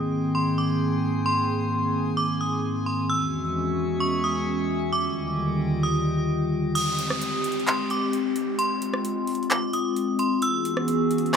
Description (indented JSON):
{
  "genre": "hip hop, atmospheric cloud-rap",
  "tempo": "131 BPM",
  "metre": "4/4",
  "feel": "half-time",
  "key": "Ab lydian",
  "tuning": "A4 = 440 Hz",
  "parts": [
    { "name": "metallic FM bell", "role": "melody", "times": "0.0-11.4 s", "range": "C6 to E6", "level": "-28 LUFS", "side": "right 1 dB", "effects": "chorus, digital delay" },
    { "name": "warbly tape-like pad", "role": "sustained chords", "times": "0.0-11.4 s", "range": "Eb2 to Ab4", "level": "-24 LUFS", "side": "left 1 dB", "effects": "chorus, built-in reverb" },
    { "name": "drifting glass-harmonics texture", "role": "texture", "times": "0.0-6.7 s", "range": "G4 to D7", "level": "-35 LUFS", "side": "left 2 dB", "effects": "chorus, built-in reverb" },
    { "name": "booming analog drum machine", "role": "drums", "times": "6.8-11.4 s", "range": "crash cymbal, handclaps, hi-hat, rim click", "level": "-28 LUFS", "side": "equal", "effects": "none" },
    { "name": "downlifter", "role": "sound effects", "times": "6.8-10.4 s", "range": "none", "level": "-35 LUFS", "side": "equal", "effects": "none" }
  ],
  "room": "wet small room reverb, RT60 0.5 s",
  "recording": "rough home demo mix",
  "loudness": "-22 LUFS",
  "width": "side -7 dB against mid",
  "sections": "0.0-6.8 A section; 6.8-11.4 B section",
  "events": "kick muted 6.8-11.4",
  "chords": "0.0 Abmaj7; 3.1 E6; 4.9 Ebmaj7; 6.8 Abmaj7; 10.4 E6"
}